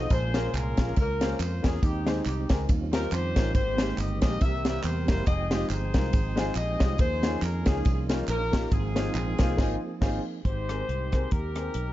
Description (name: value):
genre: uptempo gospel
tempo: 139 BPM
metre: 4/4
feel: swing 56% on 8ths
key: Ab major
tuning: A4 = 438 Hz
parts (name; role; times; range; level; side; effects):
- warm horn section; melody; 0.0-11.9 s; C4 to E5; -33 LUFS; left 2 dB; none
- warm baby grand piano; accompaniment; 0.0-11.7 s; Ab2 to C5; -33 LUFS; left 1 dB; none
- mellow tonewheel organ; sustained chords; 0.0-10.4 s; Eb3 to G5; -37 LUFS; right 5 dB; fast rotary speaker, chorus vibrato
- fingered electric bass; bass; 0.0-11.9 s; F1 to F2; -30 LUFS; equal; none
- tight funk drum kit; drums; 0.1-11.9 s; crash cymbal, hi-hat, kick drum, ride cymbal, rim click, snare drum; -26 LUFS; equal; none
- tambourine and handclaps; percussion; 0.1-9.5 s; none; -43 LUFS; right 6 dB; none
- mellow French horn section; sustained chords; 10.4-11.9 s; Ab3 to G4; -43 LUFS; right 2 dB; none
room: studio ambience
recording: dark, warm production, nothing above 7.6 kHz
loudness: -24 LUFS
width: side -14 dB against mid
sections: 0.0-10.4 A section; 10.4-11.9 B section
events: band accent 9.6-10.4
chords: 0.1 Bbm7; 1.8 Ab/Eb; 2.7 Eb13; 3.6 Abmaj9; 4.4 C7; 5.3 Fm9; 7.0 Eb9sus4; 8.7 Ab69; 10.4 Abmaj9